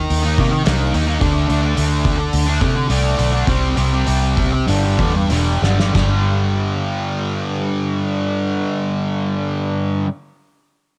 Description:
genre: rock, shoegaze and dream pop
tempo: 92-108 BPM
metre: 4/4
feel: straight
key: unclear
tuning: A4 = 439 Hz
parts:
  - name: fuzz guitar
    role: riff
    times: 0.0-10.1 s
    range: G2 to Eb4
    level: -21 LUFS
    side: equal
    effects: distortion, lush chorus, cassette tape
  - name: vintage muted fingered electric bass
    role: bass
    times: 0.0-10.0 s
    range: E1 to C3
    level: -21 LUFS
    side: equal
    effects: tube saturation
  - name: loose indie drum kit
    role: drums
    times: 0.1-6.1 s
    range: hi-hat, kick drum, snare drum, splash cymbal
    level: -24 LUFS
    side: equal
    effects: cassette tape
room: small room reverb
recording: home recording on cassette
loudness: -18 LUFS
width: mono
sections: 0.0-5.9 A section; 5.9-8.6 B section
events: slowing down 1.2-5.9; drum fill 5.6-5.9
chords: 0.0 Eb5; 1.2 D5; 3.5 C5; 4.7 G5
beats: 0.10 0.66 | 1.21 1.77 2.33 2.90 | 3.48 4.07 4.68 5.30 | 5.94 6.60 7.25 7.91

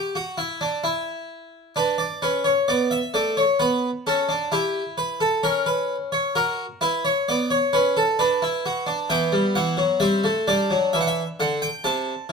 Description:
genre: classical, baroque-style 3-part fugue for harpsichord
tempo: 66 BPM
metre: 4/4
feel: straight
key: unclear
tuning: A4 = 440 Hz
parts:
  - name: harpsichord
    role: solo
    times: 0.0-12.3 s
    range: C3 to A5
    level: -20 LUFS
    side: equal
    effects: none
room: moderate stone room reverb, RT60 0.9 s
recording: none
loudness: -20 LUFS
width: side -5 dB against mid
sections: 0.0-12.3 A section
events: none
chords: 0.0 N.C.; 1.8 Bm; 3.6 C#m7b5/B; 5.4 A#dim/C#; 7.3 Bm; 9.1 Em; 10.9 F#m7b5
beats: 0.85 | 1.77 2.70 3.62 4.54 | 5.45 6.36 7.28 8.19 | 9.10 10.01 10.92 11.83

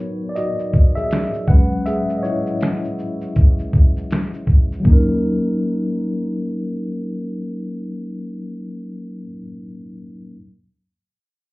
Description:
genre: lo-fi hip hop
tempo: 80 BPM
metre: 4/4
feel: swing 60% on 16ths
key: Eb phrygian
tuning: A4 = 440 Hz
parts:
  - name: mellow tine electric piano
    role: accompaniment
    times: 0.0-10.4 s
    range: Gb3 to F#5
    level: -22 LUFS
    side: left 1 dB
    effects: medium stereo tremolo, cassette tape, low-pass filter
  - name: boom bap sampler-style drum kit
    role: drums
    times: 0.4-5.1 s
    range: finger snaps, hi-hat, kick drum, shaker, snare drum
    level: -13 LUFS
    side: equal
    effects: none
room: light reverb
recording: heard muffled through a wall, club reverb, EQ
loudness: -17 LUFS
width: side -22 dB against mid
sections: 0.0-4.9 A section; 4.9-7.9 B section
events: tine electric piano solo 0.0-4.9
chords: 0.0 Abm7; 1.5 E69; 4.9 Ebm7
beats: 0.35 1.10 | 1.85 2.60 3.35 4.10 | 4.85 5.60 6.35 7.10

